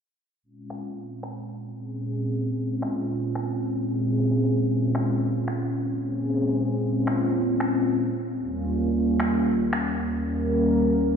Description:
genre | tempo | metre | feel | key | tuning
nu-disco, nu disco | 113 BPM | 4/4 | straight | Bb dorian | A4 = 439 Hz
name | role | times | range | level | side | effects
warm analog pad | accompaniment | 0.4-11.2 s | Eb2 to Bb4 | -23 LUFS | equal | chorus, ping-pong delay
electronic finger snaps | drums | 0.7-9.8 s | none | -34 LUFS | left 1 dB | overdrive, low-pass filter on snare, low-pass filter on room, gated reverb
room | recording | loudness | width
wet lush hall reverb, RT60 2.7 s | bright 1980s-style digital production, low-pass filter | -22 LUFS | side -7 dB against mid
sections
0.4-11.2 A section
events
filter sweep on drum 0.4-11.2; filter sweep on analog synth pad 0.4-11.2; filter sweep 0.4-11.2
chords
0.4 Bbm9; 8.7 Eb7

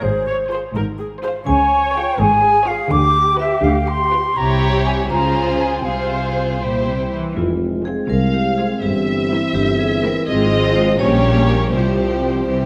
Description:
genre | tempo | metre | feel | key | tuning
cinematic, playful, whimsical film cue | 82 BPM (dotted quarters) | 6/8 | straight | F minor | A4 = 440 Hz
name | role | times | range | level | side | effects
vibraphone with medium hard mallets | melody | 0.0-12.4 s | E4 to D6 | -25 LUFS | equal | none
mellow concert flute | second line | 0.0-6.6 s | C5 to D6 | -21 LUFS | equal | none
muted chamber viola section | accompaniment | 0.0-12.7 s | E3 to Db5 | -27 LUFS | equal | none
muted chamber double bass section | bass | 0.0-12.7 s | F1 to D2 | -26 LUFS | equal | none
muted symphonic cello section | bass | 0.0-12.7 s | C2 to E3 | -25 LUFS | equal | none
muted chamber violin section | melody | 0.5-12.7 s | B4 to F5 | -27 LUFS | equal | none
muted chamber violin section | second line | 0.5-12.7 s | C4 to Ab4 | -29 LUFS | equal | none
warm French horn section | sustained chords | 7.4-12.7 s | E3 to F4 | -26 LUFS | equal | none
warm tuba | bass | 7.4-12.7 s | F1 to C2 | -27 LUFS | equal | none
room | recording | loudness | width
wet scoring stage reverb, RT60 1.5 s | none | -17 LUFS | mono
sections
0.0-7.4 A section; 7.4-12.7 B section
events
none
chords
0.0 Fm/Ab; 1.5 Db; 2.9 G7/D; 4.4 C7b9; 5.1 Dbmaj7; 5.9 Fm/C; 6.6 C; 7.4 Fm; 8.8 C7/G; 10.3 Fm/Ab; 11.0 Gdim/Bb; 11.7 Csus4

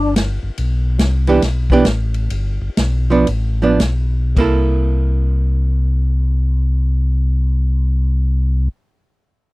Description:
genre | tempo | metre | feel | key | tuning
soul jazz organ trio | 101-145 BPM | 4/4 | swing 65% on 8ths | C mixolydian | A4 = 441 Hz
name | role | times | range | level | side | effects
mellow tonewheel organ | bass | 0.0-8.7 s | G1 to C2 | -16 LUFS | left 1 dB | slow rotary speaker
vintage drum kit | drums | 0.2-4.5 s | crash cymbal, hi-hat, kick drum, ride cymbal, snare drum | -20 LUFS | equal | none
archtop guitar, miked and amplified | accompaniment | 1.3-8.8 s | E3 to A4 | -15 LUFS | right 4 dB | none
room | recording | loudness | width
little or no reverb | dry, close 1970s-style studio recording | -14 LUFS | side -21 dB against mid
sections
0.6-4.4 A section; 4.4-9.1 B section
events
slowing down 0.6-4.4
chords
0.0 G5; 0.6 Em7; 2.3 G7; 4.4 C6

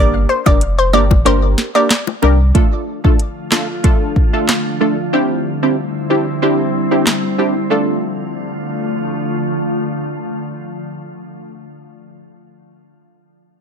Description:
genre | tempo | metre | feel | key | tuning
dancehall | 93 BPM | 4/4 | straight | D minor | A4 = 440 Hz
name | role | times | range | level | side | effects
analog pluck | melody | 0.0-1.9 s | C5 to D5 | -17 LUFS | left 2 dB | chorus, ping-pong delay
punchy chord stab | accompaniment | 0.0-11.8 s | A3 to Bb4 | -17 LUFS | right 1 dB | chorus
saturated sub bass | bass | 0.0-2.5 s | F1 to C2 | -14 LUFS | equal | none
afro-pop drum kit | drums | 0.5-7.2 s | handclaps, hi-hat, kick drum, snare drum | -14 LUFS | equal | none
bongos | percussion | 0.5-2.4 s | none | -22 LUFS | left 15 dB | none
glassy FM pad | sustained chords | 3.0-11.1 s | D3 to F4 | -20 LUFS | equal | ensemble chorus, built-in reverb, sidechain pumping
room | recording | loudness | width
little or no reverb | none | -13 LUFS | side -7 dB against mid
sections
0.0-2.5 A section; 2.5-7.7 B section; 7.7-10.3 C section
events
none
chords
0.0 Gm; 2.5 Dm; 5.1 Cadd9; 7.7 Dm

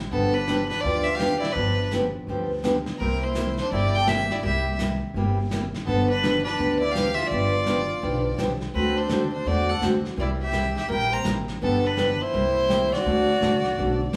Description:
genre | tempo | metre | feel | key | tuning
country, western swing | 167 BPM | 4/4 | swing 64% on 8ths | G mixolydian | A4 = 440 Hz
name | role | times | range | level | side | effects
upright bass | bass | 0.0-14.2 s | G1 to E2 | -31 LUFS | equal | none
clear fiddle | melody | 0.1-14.1 s | A4 to Bb5 | -28 LUFS | equal | none
warm trumpet | second line | 0.1-14.1 s | B3 to C5 | -34 LUFS | equal | none
picked steel-string acoustic guitar | accompaniment | 0.1-14.2 s | C3 to A4 | -28 LUFS | equal | none
vintage brush drum kit | drums | 0.1-14.2 s | brushed snare drum, hi-hat, snare drum | -36 LUFS | equal | none
room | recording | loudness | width
wet large studio reverb, RT60 1.3 s | band playing live in one room, small room ambience | -24 LUFS | mono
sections
0.0-14.2 A section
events
none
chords
0.1 G7; 3.0 C7; 5.9 G7; 8.7 D7; 10.2 C7; 11.6 G7; 12.3 C7; 13.1 D7

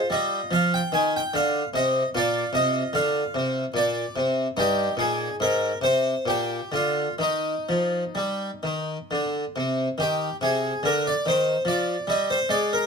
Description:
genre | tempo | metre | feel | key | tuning
classical, baroque-style suite movement for harpsichord | 62-75 BPM | 3/4 | rubato | unclear | A4 = 441 Hz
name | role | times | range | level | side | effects
harpsichord | solo | 0.0-12.9 s | G2 to Ab5 | -22 LUFS | equal | none
room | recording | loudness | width
light reverb | none | -22 LUFS | side -5 dB against mid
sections
0.0-10.0 A section; 10.0-12.9 A section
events
none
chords
0.0 Fm; 2.1 Bb; 4.6 Eb/G; 5.4 Ab; 6.3 Bb; 7.2 Cm

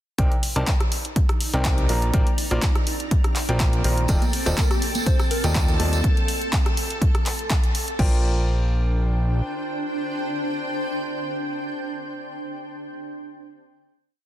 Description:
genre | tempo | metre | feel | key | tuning
piano house | 123 BPM | 4/4 | swing 54% on 16ths | Bb major | A4 = 440 Hz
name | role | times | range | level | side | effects
clear grand piano | riff | 0.2-12.0 s | C3 to Bb5 | -29 LUFS | equal | sidechain pumping, tape echo
fat analog bass | bass | 0.2-9.4 s | Eb1 to Eb2 | -22 LUFS | equal | tube saturation, sidechain pumping
electronic kick drum | drums | 0.2-8.1 s | none | -21 LUFS | equal | none
punchy analog drum machine | drums | 0.2-8.1 s | crash cymbal, handclaps, hi-hat, rim click | -28 LUFS | equal | none
granular cloud pad | texture | 1.0-12.2 s | C4 to Bb5 | -30 LUFS | equal | built-in reverb, sidechain pumping
string machine, violins | sustained chords | 4.1-8.0 s | A4 to A5 | -31 LUFS | equal | ensemble chorus, sidechain pumping
tambourine and congas | percussion | 4.1-6.0 s | none | -31 LUFS | right 5 dB | none
soft struck synth lead | melody | 4.5-5.5 s | G4 to C5 | -33 LUFS | left 2 dB | chorus, tape echo
room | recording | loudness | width
digital ambience | dense, heavily limited modern master | -20 LUFS | side -12 dB against mid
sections
0.2-8.0 drop; 8.0-11.9 final chord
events
drop 0.2-8.0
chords
0.2 Cm9; 1.9 Bb69; 4.1 Ebmaj9#11; 6.0 N.C.; 8.0 Bb69

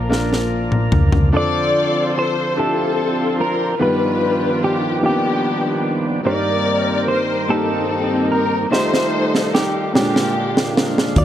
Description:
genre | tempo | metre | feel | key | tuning
slow gospel | 49 BPM (dotted quarters) | 6/8 | straight | Bb major | A4 = 439 Hz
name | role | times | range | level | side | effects
clean electric guitar | melody | 0.0-11.2 s | G4 to D5 | -23 LUFS | right 3 dB | harmonic tremolo
warm symphonic string section | melody | 0.0-11.2 s | B3 to D5 | -21 LUFS | left 3 dB | none
bright grand piano | accompaniment | 0.0-11.2 s | G2 to F5 | -22 LUFS | left 1 dB | none
tonewheel organ | sustained chords | 0.0-11.2 s | G2 to F5 | -24 LUFS | right 3 dB | slow rotary speaker, overdrive
hollow-body short-scale fingered electric bass | bass | 0.0-1.3, 11.2 s | Bb1 to Eb2 | -19 LUFS | equal | none
tight funk drum kit | drums | 0.1-1.3, 8.7-11.2 s | hi-hat, kick drum, snare drum, toms | -19 LUFS | equal | none
room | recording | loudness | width
light reverb, small room ambience | dark, warm production | -15 LUFS | side -11 dB against mid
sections
0.0-1.3 A section; 1.3-11.2 B section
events
drum fill 0.1-1.3, 8.7-11.2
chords
0.0 Bb; 1.3 Dm7; 3.8 G7b13; 6.3 Cm7/G; 8.7 F9; 9.9 Bb7

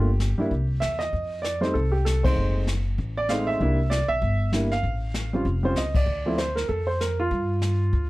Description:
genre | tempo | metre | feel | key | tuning
jazz piano trio | 194 BPM | 4/4 | swing 60% on 8ths | C mixolydian | A4 = 439 Hz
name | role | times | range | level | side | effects
warm upright piano | melody | 0.0-8.1 s | F3 to F5 | -26 LUFS | right 1 dB | none
upright bass | bass | 0.0-8.1 s | E#1 to G2 | -25 LUFS | equal | none
jazz brush drum kit | drums | 0.2-8.1 s | brushed snare drum, crash cymbal, hi-hat, kick drum, snare drum | -29 LUFS | left 1 dB | none
room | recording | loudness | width
light reverb | dark, warm production | -22 LUFS | side -19 dB against mid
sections
0.0-8.1 A section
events
band accent 2.2, 5.9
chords
0.0 Gm; 0.5 C; 1.1 F9; 2.4 F#dim7; 3.6 C9; 4.8 Aaug; 6.1 Dm7; 7.3 G7(no3)

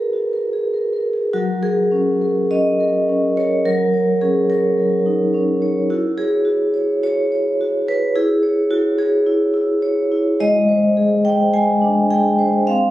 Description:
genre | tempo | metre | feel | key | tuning
classical, contemporary piece for solo vibraphone | 106 BPM | 4/4 | rubato | F# major | A4 = 440 Hz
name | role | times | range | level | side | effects
vibraphone with medium mallets | solo | 0.0-12.9 s | F#3 to Ab5 | -15 LUFS | equal | none
room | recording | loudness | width
light reverb | recorded on a phone in the room, studio reverb | -15 LUFS | side -14 dB against mid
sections
0.0-1.3 A section; 1.3-12.9 B section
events
none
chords
0.0 F#add9; 1.3 F#69; 5.9 E69; 8.2 C#m/E; 10.4 Abmaj7#11

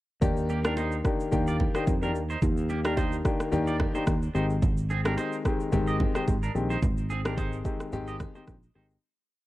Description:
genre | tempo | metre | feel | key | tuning
afrobeats | 109 BPM | 4/4 | swing 55% on 16ths | Eb major | A4 = 440 Hz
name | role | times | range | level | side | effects
clear grand piano | accompaniment | 0.2-8.9 s | Eb3 to G4 | -30 LUFS | left 3 dB | none
sustaining fretless electric bass | bass | 0.2-9.0 s | Ab1 to F2 | -29 LUFS | equal | lush chorus
afro-pop drum kit | drums | 0.2-9.0 s | kick drum, rim click, shaker | -28 LUFS | equal | vintage 12-bit sampler grit
congas and bongos | percussion | 0.2-8.6 s | none | -36 LUFS | right 3 dB | none
clean electric guitar | riff | 0.5-8.9 s | Bb3 to Eb5 | -36 LUFS | right 4 dB | ping-pong delay
room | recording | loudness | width
digital ambience | worn, warbling old tape, cassette tape, warbly pitch drift | -25 LUFS | side -16 dB against mid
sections
0.2-9.0 verse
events
fade-out 6.8-9.0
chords
0.2 Ebmaj7; 4.3 Abmaj7

